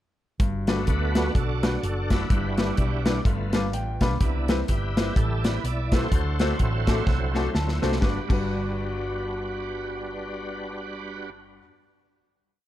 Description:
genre	uptempo gospel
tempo	126 BPM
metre	4/4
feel	swing 59% on 8ths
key	G major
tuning	A4 = 440 Hz
part	bright upright piano	accompaniment	0.4-11.6 s	G2 to B5	-30 LUFS	left 3 dB	none
part	mellow French horn section	sustained chords	0.4-11.3 s	F#3 to F#4	-38 LUFS	equal	none
part	hollow-body short-scale fingered electric bass	bass	0.4-11.6 s	F#1 to D2	-28 LUFS	equal	none
part	modern studio drum kit	drums	0.4-8.4 s	crash cymbal, hi-hat, kick drum, snare drum	-25 LUFS	equal	none
part	bright tonewheel organ	sustained chords	0.7-11.3 s	F#3 to D5	-32 LUFS	right 2 dB	slow rotary speaker, overdrive, chorus vibrato
room	little or no reverb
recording	dark, warm production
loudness	-23 LUFS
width	side -13 dB against mid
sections	0.4-8.0 breakdown; 8.0-11.8 final chord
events	tonewheel organ solo 0.4-8.0; upright piano fill 3.3-4.2, 7.3-8.0; drum fill 7.1-8.0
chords	0.4 Gmaj7; 2.3 Em7/G; 3.3 G7; 4.2 Cmaj7; 6.1 D7; 8.0 Gmaj7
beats	| 0.40 0.87 1.35 1.83 | 2.30 2.78 3.25 3.73 | 4.21 4.68 5.16 5.64 | 6.11 6.59 7.07 7.54 | 8.02 8.49 8.96 9.44 | 9.91 10.38 10.86 11.33

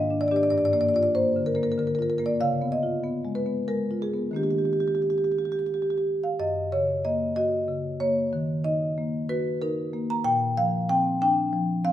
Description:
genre	classical, contemporary piece for solo marimba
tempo	94 BPM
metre	3/4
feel	rubato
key	Eb major, F# major from 6.4 s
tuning	A4 = 441 Hz
part	marimba with medium mallets	solo	0.0-11.9 s	F#2 to A#5	-23 LUFS	equal	none
room	moderate recital hall reverb, RT60 1.4 s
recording	none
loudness	-23 LUFS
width	side -12 dB against mid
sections	0.0-6.4 A section; 6.4-11.9 B section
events	none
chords	0.0 Ab5; 0.5 Gm7; 2.4 Db9; 4.4 Ebmaj7; 6.4 F#6; 8.3 D#m; 10.3 A#69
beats	| 0.51 1.14 1.77 | 2.41 3.05 3.70 | 4.37 5.04 5.71 | 6.39 7.05 7.69 | 8.34 8.98 9.62 | 10.26 10.90 11.54

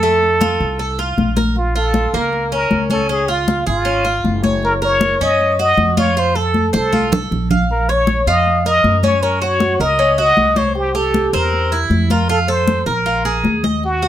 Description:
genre	latin, Cuban son and guajira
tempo	157 BPM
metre	4/4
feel	straight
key	Bb harmonic minor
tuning	A4 = 440 Hz
part	trumpet with plunger mute	melody	0.0-14.1 s	F4 to Eb5	-17 LUFS	equal	none
part	Cuban tres	arpeggios	0.0-14.1 s	A3 to F5	-19 LUFS	equal	none
part	upright bass	bass	0.0-14.1 s	Gb1 to Gb2	-20 LUFS	right 1 dB	none
part	congas	percussion	0.0-14.1 s	none	-20 LUFS	left 2 dB	none
room	moderate studio reverb, RT60 0.7 s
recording	none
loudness	-13 LUFS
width	side -11 dB against mid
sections	0.0-1.6 A section; 1.6-13.8 B section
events	drum fill 6.5-7.7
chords	0.0 F; 1.6 Bbm; 3.1 Db; 4.6 Gb; 6.2 F; 7.7 Bbm; 9.2 Gb5; 10.8 C7; 12.3 F; 13.1 Bb5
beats	| 0.03 0.41 0.80 1.18 | 1.56 1.95 2.33 2.71 | 3.10 3.48 3.86 4.25 | 4.63 5.01 5.39 5.78 | 6.16 6.54 6.93 7.31 | 7.69 8.08 8.46 8.84 | 9.22 9.61 9.99 10.38 | 10.76 11.14 11.53 11.91 | 12.29 12.68 13.06 13.44 | 13.83

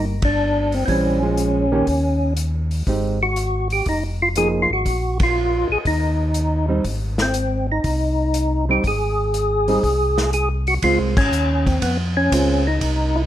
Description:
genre	soul jazz organ trio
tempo	121 BPM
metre	4/4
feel	swing 69% on 8ths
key	Ab major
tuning	A4 = 440 Hz
part	percussive tonewheel organ	melody	0.0-13.2 s	Cb4 to Ab4	-20 LUFS	equal	slow rotary speaker, chorus vibrato
part	hollow-body jazz guitar	accompaniment	0.0-12.6 s	Eb3 to Ab4	-23 LUFS	right 3 dB	none
part	mellow tonewheel organ	bass	0.0-13.3 s	F1 to F2	-22 LUFS	equal	slow rotary speaker
part	vintage drum kit	drums	0.2-13.0 s	crash cymbal, hi-hat, kick drum, ride cymbal, snare drum	-26 LUFS	equal	none
room	moderate large studio reverb, RT60 1.2 s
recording	none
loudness	-17 LUFS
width	side -12 dB against mid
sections	0.0-10.8 A section; 10.8-13.3 B section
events	band accent 0.1, 5.1, 11.1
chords	0.0 Cm7; 0.9 Bbm7; 1.9 Dbsus2/Eb; 2.9 Abmaj7; 3.9 Fm7; 4.9 Bb5; 5.8 Eb; 6.8 Ab; 10.8 Dbmaj7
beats	0.38 | 0.88 1.38 1.87 2.37 | 2.87 3.36 3.86 4.36 | 4.86 5.35 5.85 6.35 | 6.84 7.34 7.84 8.34 | 8.83 9.33 9.83 10.32 | 10.82 11.32 11.81 12.31 | 12.80

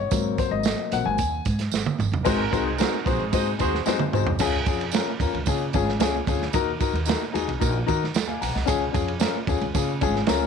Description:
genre	uptempo 1960s-style soul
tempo	112 BPM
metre	4/4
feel	straight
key	Db major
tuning	A4 = 441 Hz
part	warm upright piano	accompaniment	0.0-10.4 s	Gb3 to Bb5	-25 LUFS	left 11 dB	none
part	upright bass	bass	0.0-10.5 s	Gb1 to Eb3	-29 LUFS	right 1 dB	none
part	crunchy breakbeat drum kit	drums	0.1-10.4 s	crash cymbal, hi-hat, kick drum, ride cymbal, snare drum, toms	-26 LUFS	right 5 dB	none
part	congas	percussion	0.1-10.5 s	none	-38 LUFS	right 16 dB	none
part	tambourine	percussion	0.1-10.4 s	none	-36 LUFS	right 16 dB	none
part	warm horn section	second line	2.2-3.8 s	C4 to Eb5	-29 LUFS	right 14 dB	none
room	light reverb, studio reverb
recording	1960s-style stereo with parts hard left and right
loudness	-21 LUFS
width	side -6 dB against mid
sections	0.0-2.3 A section; 2.3-4.4 B section; 4.4-10.5 C section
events	upright piano solo 0.0-2.3; drum fill 1.7-2.3, 3.9-4.4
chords	0.1 Ab7; 4.4 Db; 6.5 Ebm; 8.7 Db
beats	| 0.12 0.66 1.19 1.73 | 2.26 2.80 3.33 3.87 | 4.40 4.94 5.47 6.01 | 6.54 7.08 7.61 8.15 | 8.68 9.21 9.75 10.29

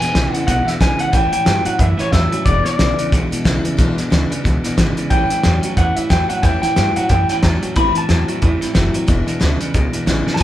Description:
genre	rockabilly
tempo	181 BPM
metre	4/4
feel	swing 59% on 8ths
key	unclear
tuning	A4 = 439 Hz
part	electric guitar through a small old amp	melody	0.0-3.1, 5.1-10.4 s	C#5 to B5	-19 LUFS	left 1 dB	none
part	picked steel-string acoustic guitar	accompaniment	0.0-10.4 s	E2 to E4	-23 LUFS	left 3 dB	none
part	electric guitar at the edge of break-up	riff	0.0-10.4 s	E2 to F#3	-22 LUFS	right 3 dB	none
part	upright bass	bass	0.0-10.4 s	E1 to G2	-19 LUFS	equal	none
part	cloth-damped thuddy drum kit	drums	0.0-10.4 s	hi-hat, kick drum, snare drum, splash cymbal	-19 LUFS	equal	none
room	light reverb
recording	band playing live in one room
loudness	-14 LUFS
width	side -13 dB against mid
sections	0.0-10.4 A section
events	drum fill 10.2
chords	0.0 E7; 1.1 A7; 2.5 E7; 5.1 A7; 7.8 Am7; 9.1 E7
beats	0.15 0.48 0.81 | 1.14 1.47 1.80 2.13 | 2.46 2.79 3.12 3.45 | 3.79 4.12 4.45 4.78 | 5.11 5.44 5.77 6.10 | 6.43 6.77 7.10 7.43 | 7.76 8.09 8.42 8.75 | 9.09 9.42 9.75 10.08 | 10.41

